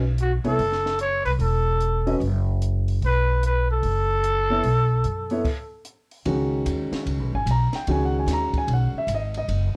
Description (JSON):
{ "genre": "modal jazz", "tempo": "148 BPM", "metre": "4/4", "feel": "swing 65% on 8ths", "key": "unclear", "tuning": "A4 = 440 Hz", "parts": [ { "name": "upright bass", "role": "bass", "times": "0.0-9.7 s", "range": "E1 to F#2", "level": "-26 LUFS", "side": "equal", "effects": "none" }, { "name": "growling trumpet", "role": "melody", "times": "0.2-5.8 s", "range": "F#4 to C#5", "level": "-26 LUFS", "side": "equal", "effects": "none" }, { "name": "compact cocktail drum kit", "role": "drums", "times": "0.2-9.6 s", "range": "crash cymbal, hi-hat, kick drum, ride cymbal, snare drum", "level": "-36 LUFS", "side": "equal", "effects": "none" }, { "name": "warm grand piano", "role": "accompaniment", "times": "0.4-9.8 s", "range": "D#3 to A#5", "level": "-28 LUFS", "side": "equal", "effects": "none" } ], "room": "light reverb", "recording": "dark, warm production", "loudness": "-23 LUFS", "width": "mono", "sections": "0.0-6.3 A section; 6.3-9.8 B section", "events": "stop 5.4-6.3", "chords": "0.0 B7sus4; 6.3 C#9sus4" }